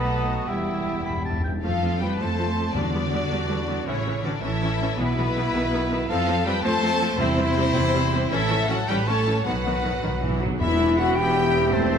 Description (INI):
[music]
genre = cinematic, heroic adventure film score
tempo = 107 BPM (dotted quarters)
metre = 6/8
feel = straight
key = E minor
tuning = A4 = 440 Hz
[part]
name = rich symphonic violin section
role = melody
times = 0.0-12.0 s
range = B4 to A5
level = -29 LUFS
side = left 4 dB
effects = none
[part]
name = bright concert flute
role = second line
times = 0.0-1.4, 10.6-12.0 s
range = C5 to A5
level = -31 LUFS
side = left 2 dB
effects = none
[part]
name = clear clarinet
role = second line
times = 0.0-1.4, 10.6-12.0 s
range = B3 to E5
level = -34 LUFS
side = left 1 dB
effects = none
[part]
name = clear oboe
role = second line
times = 0.0-1.5, 10.6-12.0 s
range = D#5 to B5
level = -32 LUFS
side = left 3 dB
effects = none
[part]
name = rich symphonic violin section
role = second line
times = 0.0-12.0 s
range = B3 to G5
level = -32 LUFS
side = left 2 dB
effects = none
[part]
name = rich chamber viola section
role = accompaniment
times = 0.0-12.0 s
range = D#3 to C#4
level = -30 LUFS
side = right 1 dB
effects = none
[part]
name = dark French horn section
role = sustained chords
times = 0.0-1.4, 10.6-12.0 s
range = F#3 to G4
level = -26 LUFS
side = left 3 dB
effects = none
[part]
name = bright trumpet section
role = stabs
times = 0.0-12.0 s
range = C4 to C#5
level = -29 LUFS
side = equal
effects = none
[part]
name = rich symphonic cello section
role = bass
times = 0.0-12.0 s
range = E2 to A3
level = -29 LUFS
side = right 1 dB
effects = none
[part]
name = rich symphonic double bass section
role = bass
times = 0.0-12.0 s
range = E1 to F2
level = -29 LUFS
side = right 2 dB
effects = none
[part]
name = timpani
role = percussion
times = 0.5-3.3, 7.2-12.0 s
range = E2 to B2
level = -31 LUFS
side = left 1 dB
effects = none
[part]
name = mellow tuba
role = bass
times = 10.6-12.0 s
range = E1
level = -31 LUFS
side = right 4 dB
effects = none
[sound]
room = moderate scoring stage reverb, RT60 1.6 s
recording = none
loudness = -21 LUFS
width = side -7 dB against mid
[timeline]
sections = 0.0-1.6 A section; 1.6-10.6 B section; 10.6-12.0 C section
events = timpani fill 0.5-1.6, 9.5-10.6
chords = 0.5 Em; 1.6 F; 2.8 Em; 3.9 A; 5.0 E5/B; 5.5 B; 6.1 F; 7.2 C/E; 8.3 A; 9.5 B; 10.6 Em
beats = | 0.47 1.06 | 1.64 2.20 | 2.76 3.31 | 3.87 4.42 | 4.98 5.53 | 6.08 6.63 | 7.19 7.75 | 8.31 8.88 | 9.45 10.04 | 10.61 11.17 | 11.73